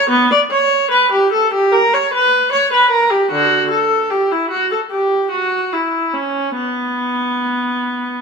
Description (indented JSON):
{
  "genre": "classical, baroque-style suite movement for unaccompanied viola",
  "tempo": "70-77 BPM",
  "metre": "4/4",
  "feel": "rubato",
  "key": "B minor",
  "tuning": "A4 = 440 Hz",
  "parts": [
    { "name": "rich viola", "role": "solo", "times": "0.0-8.2 s", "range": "D3 to D5", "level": "-13 LUFS", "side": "equal", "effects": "none" }
  ],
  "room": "wet stone room reverb, RT60 1.3 s",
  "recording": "none",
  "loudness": "-13 LUFS",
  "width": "side -5 dB against mid",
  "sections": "0.0-8.2 A section",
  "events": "none",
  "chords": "none"
}